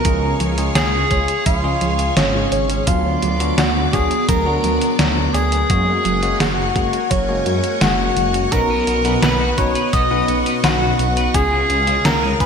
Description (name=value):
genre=synthwave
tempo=85 BPM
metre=4/4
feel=straight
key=unclear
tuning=A4 = 437 Hz
part: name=mellow tenor saxophone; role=melody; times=0.0-12.5 s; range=C#4 to D#5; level=-20 LUFS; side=equal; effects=ping-pong delay
part: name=FM electric piano with soft pad layer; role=second line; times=0.0-12.5 s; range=C#5 to D#6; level=-26 LUFS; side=equal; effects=chorus, digital delay
part: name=string machine, full ensemble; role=sustained chords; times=0.0-12.5 s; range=B3 to D6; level=-24 LUFS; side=right 1 dB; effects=ensemble chorus
part: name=dark detuned saw bass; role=bass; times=0.0-12.5 s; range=F#1 to F#2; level=-22 LUFS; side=equal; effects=none
part: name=detuned 8-bit digital drum machine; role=drums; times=0.0-12.5 s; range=hi-hat, snare drum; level=-21 LUFS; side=equal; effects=gated reverb
part: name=soft round pluck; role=arpeggios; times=0.1-8.4 s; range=E#3 to D5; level=-27 LUFS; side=right 3 dB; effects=chorus, digital delay
part: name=bell-like tine electric piano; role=stabs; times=0.1-12.5 s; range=B2 to B4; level=-24 LUFS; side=left 3 dB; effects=wide subtle chorus
part: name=electronic kick drum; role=drums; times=0.1-12.5 s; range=none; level=-21 LUFS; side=equal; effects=none
part: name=electric guitar at the edge of break-up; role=riff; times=8.5-12.3 s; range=C#3 to B4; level=-27 LUFS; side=left 4 dB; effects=analog chorus, digital delay
room=moderate lush hall reverb, RT60 2.0 s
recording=bright 1980s-style digital production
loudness=-15 LUFS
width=side -6 dB against mid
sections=0.0-12.5 A section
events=none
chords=0.1 C#; 2.9 Bm/D; 5.7 F#add9; 8.5 Badd9; 11.3 C#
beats=| 0.05 0.76 1.46 2.17 | 2.87 3.58 4.29 4.99 | 5.70 6.40 7.11 7.82 | 8.52 9.23 9.93 10.64 | 11.35 12.05